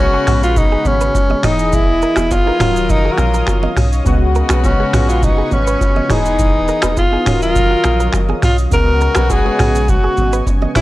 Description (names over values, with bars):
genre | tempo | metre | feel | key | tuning
afrobeats | 103 BPM | 4/4 | straight | Db mixolydian | A4 = 442 Hz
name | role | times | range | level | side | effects
breathy tenor saxophone | melody | 0.0-10.8 s | Db4 to Bb4 | -17 LUFS | equal | none
warm horn section | second line | 0.0-10.8 s | Db3 to D#5 | -22 LUFS | left 3 dB | none
warm analog keys | accompaniment | 0.0-10.8 s | Db3 to D#5 | -22 LUFS | left 1 dB | chorus
lush unison pad | sustained chords | 0.3-10.8 s | Cb4 to D#6 | -28 LUFS | equal | chorus
punchy sub bass | bass | 0.0-10.8 s | Eb1 to Db2 | -17 LUFS | equal | none
direct-recorded clean electric guitar | riff | 0.1-10.8 s | Gb4 to Eb5 | -27 LUFS | right 7 dB | none
booming analog drum machine | drums | 0.3-10.8 s | finger snaps, hi-hat, kick drum, rim click, shaker, toms | -16 LUFS | equal | none
congas and bongos | percussion | 0.6-10.8 s | none | -27 LUFS | right 3 dB | none
room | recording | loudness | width
digital ambience | dry, gritty hardware recording, cassette tape | -12 LUFS | side -17 dB against mid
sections
0.0-10.8 A section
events
none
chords
0.0 Db7sus4; 1.4 Emaj7; 2.6 Ebm9; 4.1 Db7sus4; 6.1 Emaj7; 7.3 Ebm9; 8.7 Db7sus4